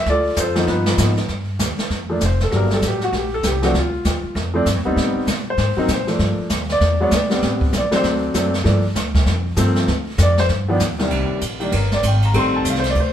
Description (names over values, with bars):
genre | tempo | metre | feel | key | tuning
jazz piano trio | 196 BPM | 4/4 | swing 62% on 8ths | G minor | A4 = 439 Hz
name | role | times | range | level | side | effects
warm grand piano | melody | 0.0-13.1 s | C2 to C6 | -20 LUFS | left 1 dB | none
upright bass | bass | 0.0-13.1 s | F1 to B2 | -21 LUFS | equal | none
jazz brush drum kit | drums | 0.1-13.0 s | brushed snare drum, hi-hat, kick drum, ride cymbal, snare drum | -22 LUFS | right 1 dB | none
room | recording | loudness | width
moderate studio reverb, RT60 0.9 s | band playing live in one room | -16 LUFS | side -10 dB against mid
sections
0.0-1.3 A section; 1.3-11.1 B section; 11.1-13.1 B section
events
grand piano solo 1.3-13.1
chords
0.1 Dm7; 0.7 G7alt; 1.3 G7(no3); 2.5 Gmmaj7; 3.1 Bbmaj7sus2; 3.7 Dm; 5.0 Am7b5; 5.6 Abadd9; 6.2 Gm9; 6.8 E7(no3); 7.4 Am11; 8.0 D7; 8.7 Gm9; 9.9 Dm; 10.5 G5; 11.1 Cm7; 12.3 Am7b5